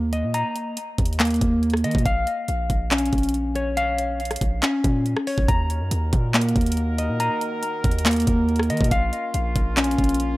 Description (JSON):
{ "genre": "hip hop, trap", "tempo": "140 BPM", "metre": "4/4", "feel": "half-time", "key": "Eb minor", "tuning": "A4 = 440 Hz", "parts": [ { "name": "mellow electric guitar", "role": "arpeggios", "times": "0.0-10.4 s", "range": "Bb3 to Bb5", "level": "-23 LUFS", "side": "left 1 dB", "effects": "spring reverb, low-pass filter, analog delay" }, { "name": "hard-hitting 808-style bass", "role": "bass", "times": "0.0-10.4 s", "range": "Bb1 to Eb3", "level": "-25 LUFS", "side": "equal", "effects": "none" }, { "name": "trap drum kit", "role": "drums", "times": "0.1-10.3 s", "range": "handclaps, hi-hat, kick drum, rim click", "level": "-23 LUFS", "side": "equal", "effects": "none" }, { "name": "clear brass ensemble", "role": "sustained chords", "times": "5.5-10.4 s", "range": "Eb3 to Bb4", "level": "-32 LUFS", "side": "right 1 dB", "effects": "none" } ], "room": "little or no reverb", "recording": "dry, gritty hardware recording", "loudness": "-20 LUFS", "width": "side -18 dB against mid", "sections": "0.0-5.5 A section; 5.5-10.4 B section", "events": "none", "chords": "0.0 Eb5; 2.1 Bbm; 5.5 Ebm; 8.9 Bbm" }